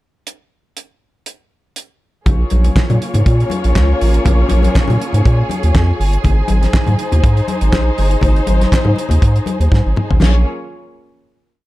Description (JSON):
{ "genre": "disco", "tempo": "121 BPM", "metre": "4/4", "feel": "straight", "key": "Bb minor", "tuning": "A4 = 442 Hz", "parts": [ { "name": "damped 70s drum kit", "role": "drums", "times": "0.3-10.3 s", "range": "crash cymbal, handclaps, hi-hat, kick drum, snare drum, toms", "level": "-16 LUFS", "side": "equal", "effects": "none" }, { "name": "warm studio string section", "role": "sustained chords", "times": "2.3-10.4 s", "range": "Bb3 to Db5", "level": "-21 LUFS", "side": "left 1 dB", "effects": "none" }, { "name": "round analog bass", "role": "bass", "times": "2.3-10.4 s", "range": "G1 to Bb2", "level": "-13 LUFS", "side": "equal", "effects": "none" }, { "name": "congas", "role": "percussion", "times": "2.3-10.4 s", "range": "none", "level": "-23 LUFS", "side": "left 3 dB", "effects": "none" } ], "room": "studio ambience", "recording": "dark, warm production", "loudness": "-12 LUFS", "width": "side -17 dB against mid", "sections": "0.3-2.3 pickup bar; 2.3-10.2 groove; 10.2-11.7 final chord", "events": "drum fill 9.7-10.2", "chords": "0.3 N.C.; 2.3 Bbm7; 6.2 Ab; 10.2 Bbm7", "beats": "| 0.27 0.77 1.27 1.76 | 2.26 2.76 3.26 3.76 | 4.26 4.75 5.25 5.75 | 6.24 6.74 7.24 7.73 | 8.23 8.72 9.22 9.71 | 10.21" }